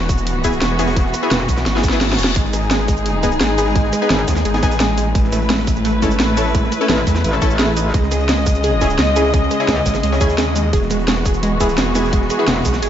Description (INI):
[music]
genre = dark technical drum and bass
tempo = 172 BPM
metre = 4/4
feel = straight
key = unclear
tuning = A4 = 438 Hz
[part]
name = muted studio string section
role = sustained chords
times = 0.0-12.9 s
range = C#3 to D#5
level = -21 LUFS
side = left 1 dB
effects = sidechain pumping
[part]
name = snarling distorted saw bass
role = bass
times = 0.0-12.9 s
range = E1 to E2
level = -20 LUFS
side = equal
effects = distortion, overdrive
[part]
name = crunchy breakbeat drum kit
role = drums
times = 0.0-12.9 s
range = hi-hat, snare drum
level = -33 LUFS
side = equal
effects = none
[part]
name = drum and bass drum kit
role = drums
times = 0.0-12.9 s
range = hi-hat, rim click, shaker, snare drum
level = -21 LUFS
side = right 1 dB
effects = studio ambience
[part]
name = electronic kick drum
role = drums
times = 0.1-12.7 s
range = none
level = -18 LUFS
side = equal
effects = studio ambience
[part]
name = orchestra-hit-like synth stab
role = stabs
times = 0.4-12.5 s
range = B3 to A4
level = -22 LUFS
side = left 1 dB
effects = built-in reverb, analog delay
[part]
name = metallic wobble bass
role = bass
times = 1.3-1.5, 4.1-4.3, 6.9-9.8, 12.5-12.6 s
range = E1 to C#2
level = -19 LUFS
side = equal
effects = chorus
[part]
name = reverse cymbal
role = sound effects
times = 1.8-2.4 s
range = none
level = -26 LUFS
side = left 4 dB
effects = none
[part]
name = wide unison pluck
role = arpeggios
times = 2.4-12.9 s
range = G#3 to G#4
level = -23 LUFS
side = right 2 dB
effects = sidechain pumping, analog delay
[sound]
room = moderate lush hall reverb, RT60 1.8 s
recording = dreamy mix soaked in reverb, nothing above 7.7 kHz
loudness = -14 LUFS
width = side -10 dB against mid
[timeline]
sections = 0.0-12.9 A section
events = drum fill 1.7-2.4; reverse cymbal 1.8-2.4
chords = 0.0 E; 2.4 G#m; 5.2 A; 7.9 C#m; 10.7 E